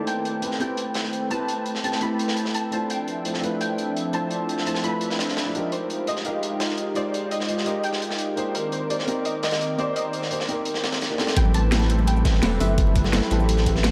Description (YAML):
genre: liquid drum and bass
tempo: 170 BPM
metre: 4/4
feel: straight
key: A minor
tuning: A4 = 438 Hz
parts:
  - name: soft round pluck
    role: melody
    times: 0.0-13.1 s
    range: Bb4 to B5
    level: -33 LUFS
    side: equal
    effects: ensemble chorus, delay
  - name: dark concert grand piano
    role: accompaniment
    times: 0.0-13.9 s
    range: G#3 to D5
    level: -31 LUFS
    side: equal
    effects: analog chorus, low-pass filter, diffuse ambient delay
  - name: warm analog pad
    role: sustained chords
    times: 0.0-13.9 s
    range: Eb3 to D6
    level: -32 LUFS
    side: equal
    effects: chorus, sidechain pumping
  - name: crunchy breakbeat drum kit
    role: drums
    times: 0.1-13.9 s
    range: hi-hat, snare drum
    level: -33 LUFS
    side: equal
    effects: high-pass filter on hats, high-pass filter on snare, high-pass filter on room
  - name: saturated sub bass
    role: bass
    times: 11.4-13.9 s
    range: E1 to A1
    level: -24 LUFS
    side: equal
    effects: none
  - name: drum and bass drum kit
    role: drums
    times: 11.4-13.9 s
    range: cabasa, hi-hat, snare drum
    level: -29 LUFS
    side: equal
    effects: overdrive
  - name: electronic kick drum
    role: drums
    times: 11.4-13.7 s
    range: none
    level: -24 LUFS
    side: equal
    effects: none
  - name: congas and bongos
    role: percussion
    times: 11.5-13.8 s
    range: none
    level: -32 LUFS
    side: equal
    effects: none
room: wet cathedral reverb, RT60 4.4 s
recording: dreamy mix soaked in reverb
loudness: -24 LUFS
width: mono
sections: 0.0-11.4 A section; 11.4-13.9 B section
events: filter sweep on grand piano 0.0-11.4; drop 11.4-13.9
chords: 0.1 Am9; 2.9 Dm9; 5.7 Fm9; 8.5 Cm9; 11.4 Am9